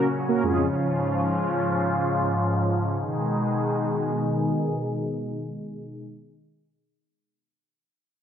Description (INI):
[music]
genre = pop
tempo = free time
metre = none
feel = none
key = G# dorian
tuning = A4 = 440 Hz
[part]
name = mellow synth brass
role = accompaniment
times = 0.0-0.7 s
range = E#2 to A#4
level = -24 LUFS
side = right 1 dB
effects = chorus, low-pass filter
[part]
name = filtered supersaw swell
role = sustained chords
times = 0.0-6.0 s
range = G#2 to G#4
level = -24 LUFS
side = equal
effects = low-pass filter
[sound]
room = moderate plate reverb, RT60 1.8 s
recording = dense, heavily limited modern master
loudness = -23 LUFS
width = side -8 dB against mid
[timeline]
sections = 0.0-3.0 A section; 3.0-5.3 B section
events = filter sweep 0.0-3.0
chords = 0.4 C#/E#; 3.0 G#m